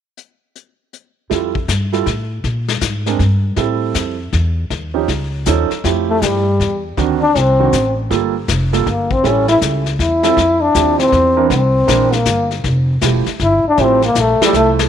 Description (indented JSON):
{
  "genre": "jazz, small-group swing and bop",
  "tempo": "159 BPM",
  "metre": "3/4",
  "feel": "swing 64% on 8ths",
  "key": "F major",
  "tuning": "A4 = 442 Hz",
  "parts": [
    { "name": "vintage brush drum kit", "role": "drums", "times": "0.2-14.9 s", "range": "brushed snare drum, hi-hat, kick drum, snare drum", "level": "-22 LUFS", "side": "left 7 dB", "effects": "none" },
    { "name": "warm concert grand piano", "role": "accompaniment", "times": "1.3-14.9 s", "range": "Eb3 to Bb4", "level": "-19 LUFS", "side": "right 12 dB", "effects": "none" },
    { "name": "upright bass", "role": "bass", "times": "1.3-14.9 s", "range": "E1 to Bb2", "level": "-18 LUFS", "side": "equal", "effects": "none" },
    { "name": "clear trombone", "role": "melody", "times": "6.1-14.7 s", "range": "G3 to E4", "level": "-14 LUFS", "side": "left 2 dB", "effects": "none" }
  ],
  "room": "moderate plate reverb, RT60 1.9 s, studio ambience",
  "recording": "1960s-style stereo with parts hard left and right",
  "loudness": "-13 LUFS",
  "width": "side -9 dB against mid",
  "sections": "0.2-1.3 A section; 1.3-5.8 B section; 5.8-14.9 C section",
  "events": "drum fill 14.2-14.9",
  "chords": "0.2 N.C.; 1.3 Fmaj9; 2.4 Bb7(no3); 3.6 Am7; 4.7 Eb7sus2; 5.8 Fmaj9; 7.0 D7b9; 8.1 Gm9; 9.2 A7; 10.4 Dm11; 11.5 C9; 12.6 Fmaj9"
}